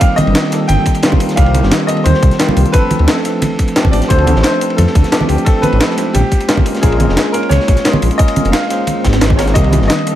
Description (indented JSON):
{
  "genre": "liquid drum and bass",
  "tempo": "176 BPM",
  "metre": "4/4",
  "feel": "straight",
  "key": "C dorian",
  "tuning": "A4 = 440 Hz",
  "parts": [
    { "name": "clear grand piano", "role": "melody", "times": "0.0-10.2 s", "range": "G4 to G5", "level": "-19 LUFS", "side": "left 1 dB", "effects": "tape echo" },
    { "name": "tine electric piano", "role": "accompaniment", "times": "0.0-10.2 s", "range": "Eb3 to Db5", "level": "-17 LUFS", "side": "equal", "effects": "medium tremolo" },
    { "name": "crunchy breakbeat drum kit", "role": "drums", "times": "0.0-10.2 s", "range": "ride cymbal, snare drum", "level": "-25 LUFS", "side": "equal", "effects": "high-pass filter on cymbals, high-pass filter on snare, high-pass filter on room" },
    { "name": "electronic kick drum", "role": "drums", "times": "0.0-9.6 s", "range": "none", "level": "-12 LUFS", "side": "equal", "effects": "none" },
    { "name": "jungle sampler-style drum kit", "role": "drums", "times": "0.0-10.1 s", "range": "hi-hat, snare drum", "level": "-18 LUFS", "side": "equal", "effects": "overdrive" },
    { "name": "congas", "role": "percussion", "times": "0.2-9.8 s", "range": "none", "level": "-19 LUFS", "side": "right 2 dB", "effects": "none" },
    { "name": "swelling detuned saw bass", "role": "bass", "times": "0.3-9.9 s", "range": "F1 to F2", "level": "-13 LUFS", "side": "equal", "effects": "none" },
    { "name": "swell", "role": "sound effects", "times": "9.0-9.6 s", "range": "none", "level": "-22 LUFS", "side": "right 6 dB", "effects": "none" }
  ],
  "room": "light reverb, small room ambience",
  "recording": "none",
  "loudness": "-10 LUFS",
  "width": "side -12 dB against mid",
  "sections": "0.0-10.2 A section",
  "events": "swell 9.0-9.6",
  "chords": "0.0 Cm7; 2.7 Dm7; 6.1 Bbm7; 9.6 Cm7"
}